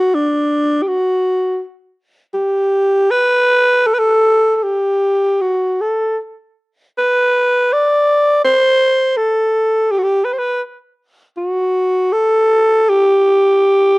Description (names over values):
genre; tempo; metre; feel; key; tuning
celtic folk; 80 BPM; 3/4; rubato; G major; A4 = 440 Hz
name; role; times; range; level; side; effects
growling alto saxophone; solo; 0.0-14.0 s; D4 to D5; -12 LUFS; equal; none
room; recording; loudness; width
little or no reverb; recorded outdoors, with no room sound; -12 LUFS; side -24 dB against mid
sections
0.0-14.0 A section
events
none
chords
none